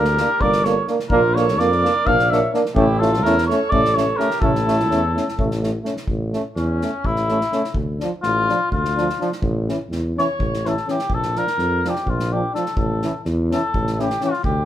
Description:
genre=balkan folk, Balkan brass band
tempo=252 BPM (eighths)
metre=7/8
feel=straight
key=A phrygian dominant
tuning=A4 = 442 Hz
part: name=cornet with cup mute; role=melody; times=0.0-14.7 s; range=C#4 to F5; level=-21 LUFS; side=left 1 dB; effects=none
part: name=clear alto saxophone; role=second line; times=0.0-5.6 s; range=E4 to D5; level=-27 LUFS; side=right 4 dB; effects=none
part: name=breathy euphonium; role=accompaniment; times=0.0-14.3 s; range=C#4 to D4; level=-26 LUFS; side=left 4 dB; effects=none
part: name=clear trombone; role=accompaniment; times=0.0-14.3 s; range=E3 to Bb3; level=-24 LUFS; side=right 4 dB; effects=none
part: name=warm tuba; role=bass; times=0.0-14.7 s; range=G1 to F2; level=-23 LUFS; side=equal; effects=none
part: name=unplugged drum kit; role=percussion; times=0.0-14.6 s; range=kick drum, snare drum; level=-27 LUFS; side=equal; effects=none
room=moderate stone room reverb, RT60 1.2 s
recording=band playing live in one room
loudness=-17 LUFS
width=side -11 dB against mid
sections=0.0-6.1 A section; 6.1-14.7 B section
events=cornet solo 6.1-14.7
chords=0.0 Gm; 1.1 Bb; 2.8 A; 7.7 Dm; 9.4 A; 11.1 Bb; 12.8 A

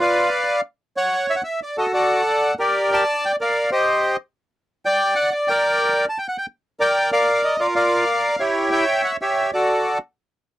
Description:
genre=tango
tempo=186 BPM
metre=3/4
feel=rubato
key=unclear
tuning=A4 = 440 Hz
part: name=bandoneon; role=solo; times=0.0-10.0 s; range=E4 to A5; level=-17 LUFS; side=equal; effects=none
room=light reverb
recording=dry, close 1970s-style studio recording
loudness=-18 LUFS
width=side -14 dB against mid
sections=0.0-6.6 A section; 6.6-10.6 A section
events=none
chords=0.0 Bdim/F; 0.8 N.C.; 1.8 D; 2.7 Gm; 3.7 Cm; 4.7 N.C.; 5.0 Bb6; 7.6 Bb; 8.6 Em69; 9.5 D

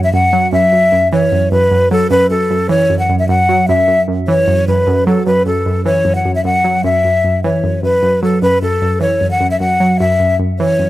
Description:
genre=hip hop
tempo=152 BPM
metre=4/4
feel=half-time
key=F# minor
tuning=A4 = 439 Hz
part: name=breathy hollow jazz flute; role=melody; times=0.0-10.9 s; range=A4 to F#5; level=-13 LUFS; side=left 1 dB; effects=none
part: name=glassy wavetable pluck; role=accompaniment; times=0.0-10.9 s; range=F#2 to F#3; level=-15 LUFS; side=right 1 dB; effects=chorus
room=little or no reverb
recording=dry, gritty hardware recording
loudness=-11 LUFS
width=side -15 dB against mid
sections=0.0-5.3 A section; 5.3-10.9 B section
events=none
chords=0.0 F#7(no3)

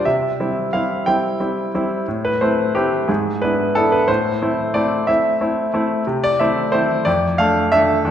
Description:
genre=classical-period piano sonatina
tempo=60 BPM (dotted quarters)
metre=6/8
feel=rubato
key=unclear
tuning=A4 = 440 Hz
part: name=bright grand piano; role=solo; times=0.0-8.1 s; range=E2 to G5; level=-16 LUFS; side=equal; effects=none
room=wet concert hall reverb, RT60 1.9 s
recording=recorded in a church or concert hall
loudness=-16 LUFS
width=side -9 dB against mid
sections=0.0-8.1 A section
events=none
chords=0.1 C; 2.1 Am; 3.1 E7/G#; 4.1 Am; 6.1 Am/C; 7.1 Dm/F

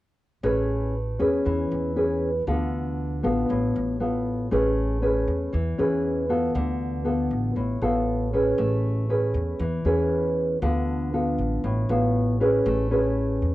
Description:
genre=bossa nova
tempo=118 BPM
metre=4/4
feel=straight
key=A major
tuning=A4 = 439 Hz
part: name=nylon-string guitar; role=accompaniment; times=0.4-13.5 s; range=A2 to B4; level=-23 LUFS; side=equal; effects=cassette tape
part: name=upright bass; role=bass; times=0.4-13.5 s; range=A1 to E2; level=-27 LUFS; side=equal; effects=none
room=moderate small room reverb, RT60 0.5 s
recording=home recording on cassette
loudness=-22 LUFS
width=side -16 dB against mid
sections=0.4-13.5 A section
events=none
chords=0.4 Amaj9; 2.5 Dm6; 4.5 Amaj9; 6.5 Dm6; 8.6 Amaj9; 10.6 Dm6; 12.7 Amaj9

